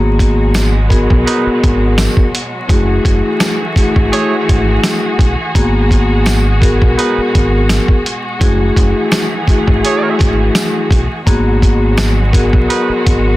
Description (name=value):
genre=hip hop, boom-bap hip-hop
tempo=84 BPM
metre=4/4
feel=swing 54% on 16ths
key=G# phrygian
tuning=A4 = 437 Hz
part: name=vibraphone with soft mallets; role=accompaniment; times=0.0-13.4 s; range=A3 to A#4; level=-15 LUFS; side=left 1 dB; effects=high-pass filter, low-pass filter
part: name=warm studio string section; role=sustained chords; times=0.0-13.4 s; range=B2 to G#4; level=-20 LUFS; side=equal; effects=high-pass filter, low-pass filter
part: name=deep dub fingered electric bass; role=bass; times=0.0-13.4 s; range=F#1 to B1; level=-15 LUFS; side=equal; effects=none
part: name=dusty soul sampler-style drum kit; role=drums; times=0.2-13.2 s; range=hi-hat, kick drum, snare drum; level=-13 LUFS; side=equal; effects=vintage 12-bit sampler grit
part: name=tambourine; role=percussion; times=0.5-12.2 s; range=none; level=-28 LUFS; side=right 7 dB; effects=none
part: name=warm trumpet section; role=stabs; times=1.3-12.9 s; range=F#3 to C#5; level=-19 LUFS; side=right 5 dB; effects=high-pass filter, low-pass filter, digital delay
room=little or no reverb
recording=dense, heavily limited modern master, vinyl crackle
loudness=-10 LUFS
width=side -17 dB against mid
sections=0.0-13.4 A section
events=none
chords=0.0 G#m9; 2.7 F#m9; 5.6 G#m9; 8.4 F#m9; 11.3 G#m9